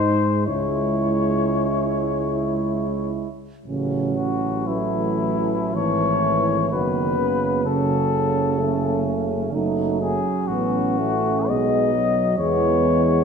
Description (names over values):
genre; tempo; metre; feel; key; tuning
classical, hymn-like piece for brass band; 54-70 BPM; 3/4; rubato; unclear; A4 = 441 Hz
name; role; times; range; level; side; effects
mellow cornet; melody; 0.0-13.2 s; E4 to D#5; -24 LUFS; left 6 dB; none
mellow French horn section; second line; 0.0-13.2 s; A3 to E4; -27 LUFS; right 6 dB; none
clear euphonium; accompaniment; 0.0-13.2 s; E3 to E4; -27 LUFS; left 1 dB; none
warm trombone; accompaniment; 0.0-13.2 s; C#3 to G#3; -27 LUFS; right 5 dB; none
mellow tuba; bass; 0.0-13.2 s; F#1 to G#2; -26 LUFS; right 1 dB; none
room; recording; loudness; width
moderate scoring stage reverb, RT60 1.6 s; minimal, uncompressed stereo recording; -19 LUFS; side -6 dB against mid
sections
0.0-3.7 A section; 3.7-13.2 B section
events
none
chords
0.5 C#m; 3.7 Amaj7; 6.7 F#m; 11.5 B; 12.4 E